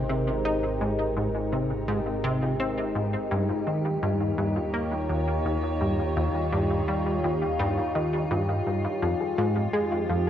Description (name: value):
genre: ambient, sequencer-driven space music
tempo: 84 BPM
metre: 4/4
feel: straight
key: unclear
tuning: A4 = 444 Hz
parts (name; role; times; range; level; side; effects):
- evolving wavetable pad; sustained chords; 0.0-10.3 s; Eb3 to Eb5; -28 LUFS; left 1 dB; chorus, built-in reverb
- plucky analog bass; riff; 0.0-10.3 s; Eb2 to Eb4; -27 LUFS; equal; analog chorus, tape echo
- analog drone; bass; 0.0-10.3 s; Ab1 to F2; -34 LUFS; equal; chorus
- soft round pluck; arpeggios; 0.1-10.3 s; F4 to F5; -38 LUFS; moving between left 4 dB and right 2 dB; none
room: wet plate reverb, RT60 2.7 s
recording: worn, warbling old tape, cassette tape, warbly pitch drift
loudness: -24 LUFS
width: side -10 dB against mid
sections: 0.0-10.3 A section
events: none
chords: 0.0 Abmaj7; 3.3 Eb7; 9.0 Fm7